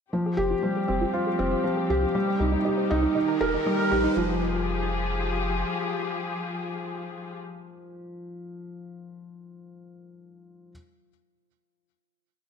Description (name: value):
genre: piano and strings electronica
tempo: 119 BPM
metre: 4/4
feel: straight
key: F minor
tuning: A4 = 440 Hz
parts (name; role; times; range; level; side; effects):
- muted studio string section; sustained chords; 0.1-7.4 s; C3 to Bb4; -32 LUFS; left 3 dB; none
- analog pluck; arpeggios; 0.1-4.4 s; Eb4 to Eb5; -32 LUFS; right 2 dB; chorus, ping-pong delay
- felt-muted upright piano; riff; 0.1-10.7 s; Eb3 to Bb4; -27 LUFS; equal; ping-pong delay
- riser; sound effects; 1.9-4.2 s; none; -38 LUFS; right 2 dB; none
- warm sub bass; bass; 0.4-5.6 s; Eb1 to C2; -30 LUFS; equal; none
room: wet recital hall reverb, RT60 1.5 s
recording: none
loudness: -23 LUFS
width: side -6 dB against mid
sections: 0.1-4.2 build; 4.2-8.2 final chord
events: build-up 0.1-4.2; filter sweep on synth arpeggio sound 0.1-4.2; riser 1.9-4.2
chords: 0.1 Fmadd9; 2.2 Cm; 3.2 Eb; 4.2 Fmadd9